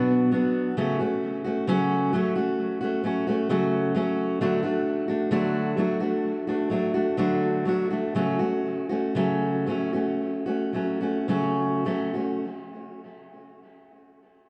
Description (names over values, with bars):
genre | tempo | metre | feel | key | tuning
pop | 51-66 BPM | 4/4 | straight | F# minor | A4 = 441 Hz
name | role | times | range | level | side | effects
fingerpicked steel-string acoustic guitar | solo | 0.0-12.4 s | B2 to F#4 | -26 LUFS | equal | tape echo
room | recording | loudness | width
moderate scoring stage reverb, RT60 1.9 s | dark, warm production, nothing above 10.6 kHz | -26 LUFS | mono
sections
0.0-12.4 A section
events
slowing down 4.4-12.4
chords
0.0 Bm; 0.8 F#m/C#; 4.4 D; 8.2 F#m/C#